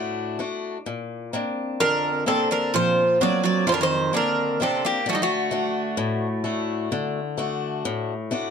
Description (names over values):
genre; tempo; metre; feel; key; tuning
greek folk, Greek bouzouki band; 129 BPM (eighths); 9/8; straight; unclear; A4 = 440 Hz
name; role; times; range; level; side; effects
picked swing-style acoustic guitar; accompaniment; 0.0-8.5 s; F2 to F#4; -26 LUFS; left 4 dB; none
Greek bouzouki; melody; 1.8-6.9 s; Eb4 to D5; -23 LUFS; equal; none
Greek bouzouki; second line; 1.8-6.9 s; C3 to Bb3; -26 LUFS; right 6 dB; analog delay
room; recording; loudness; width
light reverb; close, detailed microphones; -21 LUFS; side -6 dB against mid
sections
0.9-8.5 A section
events
none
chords
0.0 D; 0.9 Bbadd9; 5.1 D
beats
0.40 | 0.86 1.33 1.80 2.26 2.73 3.19 3.66 4.12 4.59 | 5.05 5.52 5.99 6.45 6.92 7.38 7.85 8.31